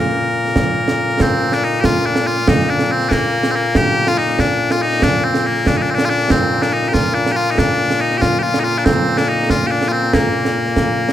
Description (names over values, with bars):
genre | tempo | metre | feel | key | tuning
scottish traditional, Scottish pipe music | 94 BPM (dotted quarters) | 6/8 | straight | Bb major | A4 = 439 Hz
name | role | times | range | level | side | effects
loud bright bagpipes | melody | 0.0-11.1 s | Bb2 to Bb4 | -16 LUFS | left 2 dB | none
concert snare drum and concert bass drum | drums | 0.5-11.1 s | none | -18 LUFS | right 2 dB | none
room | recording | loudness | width
light reverb | none | -14 LUFS | side -11 dB against mid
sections
0.0-1.2 A section; 1.2-11.1 A section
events
none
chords
none